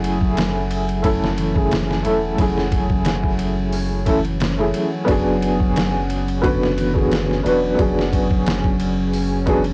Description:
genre	trip hop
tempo	89 BPM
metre	4/4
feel	swing 54% on 16ths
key	F# minor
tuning	A4 = 440 Hz
part	felt-muted upright piano	accompaniment	0.0-9.6 s	D3 to B4	-23 LUFS	equal	tremolo, cassette tape, tape echo
part	concert harp	arpeggios	0.0-9.7 s	E3 to C#4	-27 LUFS	equal	low-pass filter, cassette tape, analog delay
part	soft dub sub bass	bass	0.0-9.7 s	E1 to F#1	-28 LUFS	equal	none
part	trip hop sampler-style drum kit	drums	0.0-9.7 s	hi-hat, kick drum, ride cymbal, snare drum	-25 LUFS	equal	overdrive, cassette tape
part	bowed-like drone	texture	0.7-9.7 s	C#4	-34 LUFS	equal	none
room	little or no reverb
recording	home recording on cassette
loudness	-19 LUFS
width	mono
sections	0.0-9.7 A section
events	none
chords	0.0 F#m7; 5.1 E7

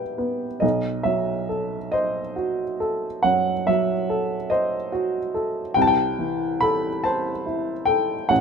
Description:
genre	classical, romantic nocturne for solo piano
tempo	47 BPM (dotted quarters)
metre	12/8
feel	rubato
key	unclear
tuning	A4 = 437 Hz
part	warm upright piano	solo	0.0-8.4 s	A1 to B5	-21 LUFS	equal	none
room	light reverb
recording	minimal, uncompressed stereo recording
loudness	-21 LUFS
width	side -6 dB against mid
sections	0.0-8.4 A section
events	none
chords	0.0 Em; 0.6 B7b9; 5.8 C6

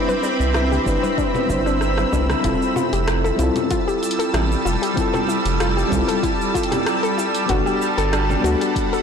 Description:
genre	sunset chillout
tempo	95 BPM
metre	4/4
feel	swing 54% on 16ths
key	F lydian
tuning	A4 = 441 Hz
part	mellow FM electric piano	accompaniment	0.0-9.0 s	G3 to C5	-23 LUFS	moving between left 6 dB and right 3 dB	chorus, auto-pan, ping-pong delay, shimmer reverb
part	shimmering ambient pad	sustained chords	0.0-9.0 s	G3 to E6	-23 LUFS	right 1 dB	chorus, built-in reverb, shimmer reverb
part	soft round pluck	arpeggios	0.1-9.0 s	D4 to B4	-25 LUFS	left 3 dB	chorus, ping-pong delay, shimmer reverb
part	deep house drum kit	drums	0.1-9.0 s	cabasa, congas, hi-hat, rim click	-27 LUFS	equal	soft clipping on snare
part	congas and bongos	percussion	0.1-2.4 s	none	-33 LUFS	right 5 dB	none
part	round analog bass	bass	0.4-8.6 s	F1 to D2	-22 LUFS	equal	none
part	electronic kick drum	drums	0.9-8.9 s	none	-27 LUFS	right 1 dB	none
room	moderate lush hall reverb, RT60 2.4 s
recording	blown-out, overdriven recording, overdrive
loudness	-17 LUFS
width	side -7 dB against mid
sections	0.0-2.4 A section; 2.4-9.0 B section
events	drum fill 1.8-2.4; band accent 2.3-2.6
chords	0.0 Cmaj9; 2.4 Fmaj9; 7.5 Gmaj9

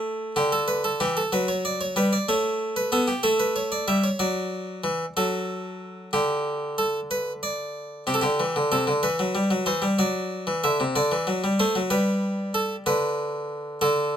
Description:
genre	classical, baroque-style two-part invention for harpsichord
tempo	62 BPM (dotted quarters)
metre	12/8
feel	straight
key	G major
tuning	A4 = 440 Hz
part	harpsichord	solo	0.0-14.2 s	C3 to E5	-22 LUFS	equal	none
room	light reverb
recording	close, detailed microphones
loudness	-22 LUFS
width	side -9 dB against mid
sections	0.0-6.1 A section; 6.1-14.2 B section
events	none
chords	0.4 G/D; 2.3 A7; 4.2 D; 6.1 G5/D; 8.1 C; 10.0 D7; 11.9 G

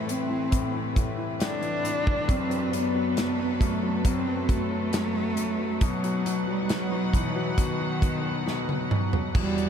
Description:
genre	pop ballad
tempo	68 BPM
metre	4/4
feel	straight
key	unclear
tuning	A4 = 440 Hz
part	dark cello	melody	0.0-9.7 s	D#3 to D4	-28 LUFS	equal	none
part	clear concert grand piano	accompaniment	0.0-9.7 s	E1 to F#3	-32 LUFS	left 4 dB	none
part	warm studio string section	sustained chords	0.0-9.7 s	E2 to F#5	-33 LUFS	right 1 dB	none
part	modern studio drum kit	drums	0.1-9.7 s	crash cymbal, hi-hat, kick drum, snare drum, toms	-28 LUFS	right 1 dB	none
part	mellow French horn section	second line	9.3-9.7 s	G3 to F#4	-32 LUFS	right 8 dB	none
room	moderate huge ambient reverb, RT60 7.2 s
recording	dreamy mix soaked in reverb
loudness	-24 LUFS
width	side -8 dB against mid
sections	0.0-9.3 A section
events	drum fill 8.5-9.3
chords	0.0 Amadd9; 2.3 F#dim; 5.8 B

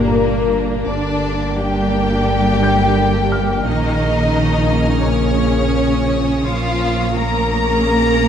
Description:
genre	cinematic, suspense film score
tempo	86 BPM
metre	4/4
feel	straight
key	unclear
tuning	A4 = 440 Hz
part	warm chamber violin section	melody	0.0-8.3 s	Bb4 to Bb5	-22 LUFS	left 3 dB	none
part	rich chamber violin section	second line	0.0-8.3 s	Bb3 to Bb4	-23 LUFS	left 1 dB	none
part	warm studio viola section	accompaniment	0.0-8.3 s	Bb3 to D4	-24 LUFS	right 1 dB	none
part	dark trombone section	sustained chords	0.0-8.3 s	Db3 to G3	-27 LUFS	right 3 dB	none
part	mellow French horn section	sustained chords	0.0-8.3 s	Bb3 to Bb4	-23 LUFS	left 4 dB	none
part	rich symphonic double bass section	bass	0.0-8.3 s	Bb1 to G2	-23 LUFS	right 2 dB	none
part	warm symphonic cello section	bass	0.0-8.3 s	Bb2 to Bb3	-22 LUFS	right 3 dB	none
part	sub bass with octave	drone	0.0-8.3 s	G1 to Bb1	-23 LUFS	equal	none
part	felt-muted upright piano	texture	0.0-8.3 s	F6 to G6	-30 LUFS	left 2 dB	none
part	clear chamber violin section	texture	3.6-8.3 s	Db6 to F6	-31 LUFS	left 2 dB	none
room	moderate scoring stage reverb, RT60 1.9 s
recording	dark, warm production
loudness	-14 LUFS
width	side -8 dB against mid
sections	0.0-8.3 A section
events	none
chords	0.0 Gm; 3.7 Bbm

